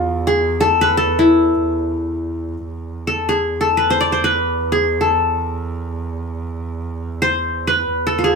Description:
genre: Arabic maqam ensemble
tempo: free time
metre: none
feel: none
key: E maqam hijaz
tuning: A4 = 440 Hz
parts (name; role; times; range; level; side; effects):
- qanun; melody; 0.0-8.4 s; E4 to D5; -15 LUFS; left 1 dB; none
- clear double bass; drone; 0.0-8.4 s; E2; -25 LUFS; right 3 dB; none
room: moderate studio reverb, RT60 0.7 s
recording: band playing live in one room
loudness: -16 LUFS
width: side -5 dB against mid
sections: 0.0-2.7 A section; 2.7-8.4 A section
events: none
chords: none

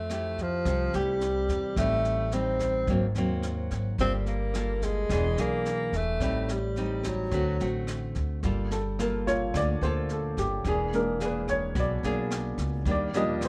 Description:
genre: bossa nova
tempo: 108 BPM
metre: 4/4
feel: straight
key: G minor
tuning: A4 = 440 Hz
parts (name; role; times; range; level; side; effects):
- breathy tenor saxophone; melody; 0.0-7.9 s; F3 to C4; -32 LUFS; equal; plate reverb
- nylon-string guitar; accompaniment; 0.0-13.5 s; Ab2 to A4; -34 LUFS; equal; none
- upright bass; bass; 0.0-13.5 s; E1 to F2; -34 LUFS; equal; none
- jazz brush drum kit; drums; 0.1-13.5 s; kick drum, rim click, snare drum; -39 LUFS; equal; none
- warm baby grand piano; accompaniment; 8.7-13.5 s; F3 to Eb5; -32 LUFS; equal; none
room: light reverb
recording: dark, warm production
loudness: -28 LUFS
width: mono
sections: 0.0-8.4 A section; 8.4-13.5 B section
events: grand piano solo 8.4-13.5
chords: 0.0 Fmaj9; 1.8 Am7b5; 2.9 Ab9; 4.0 Gm9; 5.1 E7; 6.2 Am7b5; 7.3 D7; 8.4 Gm9; 10.7 E7#11; 12.9 Ebmaj7

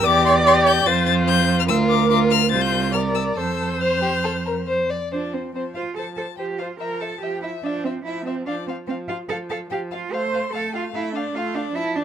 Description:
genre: quick classical-period movement for string quartet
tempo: 145 BPM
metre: 4/4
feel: rubato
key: F major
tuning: A4 = 440 Hz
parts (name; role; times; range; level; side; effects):
- rich violin; melody; 0.0-12.0 s; C5 to A6; -25 LUFS; left 12 dB; none
- warm violin; second line; 0.0-12.0 s; F4 to A5; -26 LUFS; left 4 dB; none
- rich viola; accompaniment; 0.0-12.0 s; F3 to D5; -24 LUFS; right 2 dB; none
- rich cello; bass; 0.0-12.0 s; C2 to C5; -24 LUFS; right 4 dB; none
room: little or no reverb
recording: close, detailed microphones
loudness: -19 LUFS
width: side -9 dB against mid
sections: 0.0-5.1 A section; 5.1-12.0 A section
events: none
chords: 0.0 Em7; 0.9 F5; 1.7 Bb/D; 2.5 F5/C; 2.9 C7(no3); 3.4 F; 6.8 C7/F; 8.5 N.C.; 10.1 F/A

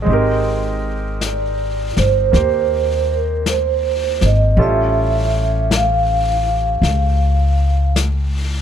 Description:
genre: jazz ballad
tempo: 53 BPM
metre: 4/4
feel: swing 68% on 8ths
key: unclear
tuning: A4 = 440 Hz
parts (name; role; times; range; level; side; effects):
- clear baby grand piano; accompaniment; 0.0-8.6 s; G3 to C5; -23 LUFS; right 3 dB; none
- upright bass; bass; 0.0-8.6 s; G1 to Eb2; -17 LUFS; left 1 dB; none
- vintage brush drum kit; drums; 0.1-8.6 s; brushed snare drum, hi-hat, snare drum; -25 LUFS; left 4 dB; none
- vibraphone with medium mallets; melody; 1.3-7.9 s; Bb4 to F5; -18 LUFS; right 3 dB; none
room: little or no reverb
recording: close, detailed microphones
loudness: -14 LUFS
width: side -9 dB against mid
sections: 0.0-8.6 A section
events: none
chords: 0.1 Abmaj9; 4.6 A7b13

